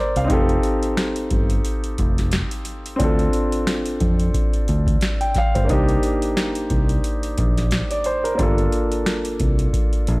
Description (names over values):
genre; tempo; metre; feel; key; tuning
hip hop, boom-bap hip-hop; 89 BPM; 4/4; swing 57% on 16ths; C dorian; A4 = 440 Hz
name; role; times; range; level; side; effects
warm baby grand piano; accompaniment; 0.0-10.2 s; Bb3 to G5; -22 LUFS; equal; cassette tape
fingered electric bass; bass; 0.2-10.2 s; F1 to F2; -22 LUFS; equal; transformer saturation
booming analog drum machine; drums; 0.2-10.2 s; hi-hat, kick drum, snare drum; -21 LUFS; equal; none
room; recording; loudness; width
little or no reverb; dry, gritty hardware recording, vinyl crackle; -18 LUFS; side -23 dB against mid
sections
0.0-10.2 A section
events
none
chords
0.3 F7; 3.0 Dm7; 5.7 Cm9; 8.4 Gm7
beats
| 0.30 0.97 1.65 2.32 | 3.00 3.67 4.34 5.02 | 5.69 6.37 7.04 7.72 | 8.39 9.06 9.74